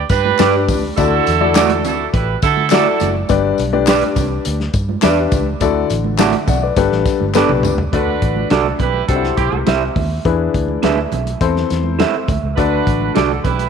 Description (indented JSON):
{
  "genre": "uptempo 1960s-style soul",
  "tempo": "103 BPM",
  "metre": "4/4",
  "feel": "straight",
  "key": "G major",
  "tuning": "A4 = 440 Hz",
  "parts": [
    { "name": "warm horn section", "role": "second line", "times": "0.0-3.1, 7.9-13.7 s", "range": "C4 to B4", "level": "-19 LUFS", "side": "right 12 dB", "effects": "none" },
    { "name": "vintage muted fingered electric bass", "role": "bass", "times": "0.0-13.7 s", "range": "F#1 to D3", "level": "-21 LUFS", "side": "equal", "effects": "none" },
    { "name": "warm soul drum kit", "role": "drums", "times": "0.1-13.7 s", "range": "hi-hat, kick drum, snare drum, toms", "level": "-20 LUFS", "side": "left 2 dB", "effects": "none" },
    { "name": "congas", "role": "percussion", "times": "0.1-13.7 s", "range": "none", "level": "-28 LUFS", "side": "right 12 dB", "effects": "none" },
    { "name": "tambourine and handclaps", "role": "percussion", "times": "0.1-7.8 s", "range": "none", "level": "-28 LUFS", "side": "left 12 dB", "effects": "none" },
    { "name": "warm upright piano", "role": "accompaniment", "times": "0.4-13.4 s", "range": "G2 to A5", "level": "-18 LUFS", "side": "left 10 dB", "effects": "none" },
    { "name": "electric guitar through a small old amp", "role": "stabs", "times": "0.4-13.3 s", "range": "A3 to E5", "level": "-20 LUFS", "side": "right 12 dB", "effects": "spring reverb" }
  ],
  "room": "light reverb, small room ambience",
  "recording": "1960s-style stereo with parts hard left and right",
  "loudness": "-13 LUFS",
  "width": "side -6 dB against mid",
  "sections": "0.0-7.9 A section; 7.9-13.7 B section",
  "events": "drum fill 7.4-7.9",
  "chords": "0.0 G; 1.0 Dadd9; 3.3 G; 5.6 Dadd9; 6.8 Gadd9; 7.9 D; 9.1 C; 10.3 E7; 11.4 Am/E; 12.6 D"
}